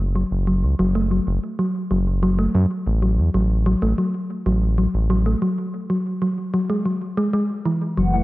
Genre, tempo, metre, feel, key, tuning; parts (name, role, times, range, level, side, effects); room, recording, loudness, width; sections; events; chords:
IDM; 94 BPM; 4/4; straight; A4 = 440 Hz
round analog bass; bass; 0.0-8.2 s; F#1 to F#2; -20 LUFS; equal
thumb-piano-like synth pluck; arpeggios; 0.2-8.0 s; E3 to A3; -21 LUFS; equal; chorus, tape echo
warbly tape-like pad; sustained chords; 8.0-8.2 s; E3 to A3; -25 LUFS; left 1 dB; chorus, built-in reverb, vintage 12-bit sampler grit
pulsing gated texture; texture; 8.0-8.2 s; F#5; -25 LUFS; left 2 dB; chorus, built-in reverb
moderate lush hall reverb, RT60 2.1 s; worn, warbling old tape, cassette tape, warbly pitch drift; -18 LUFS; side -18 dB against mid
0.0-8.0 A section
break 5.4-8.0
0.0 N.C.; 2.9 A5; 5.4 Eadd9 (rootless)